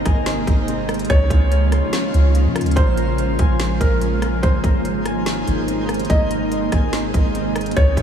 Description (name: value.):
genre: hip hop, atmospheric cloud-rap.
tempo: 144 BPM.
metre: 4/4.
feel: half-time.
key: unclear.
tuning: A4 = 440 Hz.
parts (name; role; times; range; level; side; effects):
felt-muted upright piano; melody; 0.0-8.0 s; Bb4 to Eb5; -26 LUFS; equal; tape echo.
ethereal airy pad; sustained chords; 0.0-8.0 s; C3 to F4; -22 LUFS; right 1 dB; ensemble chorus, built-in reverb, sidechain pumping.
Celtic harp; arpeggios; 0.0-8.0 s; Db3 to C6; -29 LUFS; left 3 dB; tape echo.
soft 808-style bass; bass; 0.0-8.0 s; Ab1 to Db3; -20 LUFS; equal; none.
twinkling granular texture; texture; 0.0-8.0 s; Ab3 to F5; -31 LUFS; right 1 dB; built-in reverb.
trap drum kit; drums; 0.1-8.0 s; hi-hat, kick drum, rim click, snare drum; -21 LUFS; equal; none.
room: moderate huge ambient reverb, RT60 8.0 s.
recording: dreamy mix soaked in reverb, small room ambience.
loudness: -16 LUFS.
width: side -8 dB against mid.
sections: 0.0-8.0 A section.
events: none.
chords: 0.0 Abadd9; 1.1 Dbmaj7; 2.8 Bbm7; 4.4 Abadd9.